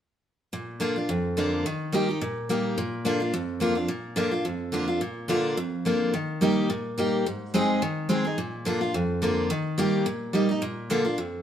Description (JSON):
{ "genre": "bluegrass", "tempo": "214 BPM", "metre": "4/4", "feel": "swing 55% on 8ths", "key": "Bb mixolydian", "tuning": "A4 = 440 Hz", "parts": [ { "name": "picked steel-string acoustic guitar", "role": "solo", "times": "0.5-11.4 s", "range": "F2 to Ab4", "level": "-24 LUFS", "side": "equal", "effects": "none" } ], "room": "moderate stone room reverb, RT60 1.0 s", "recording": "band playing live in one room", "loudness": "-24 LUFS", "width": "side -9 dB against mid", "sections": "0.5-9.5 A section; 9.5-11.4 B section", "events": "none", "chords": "0.5 Bb; 1.7 Eb; 2.8 Bb; 6.1 Eb; 7.3 Ab; 8.4 Bb; 9.5 Eb; 10.6 Bb" }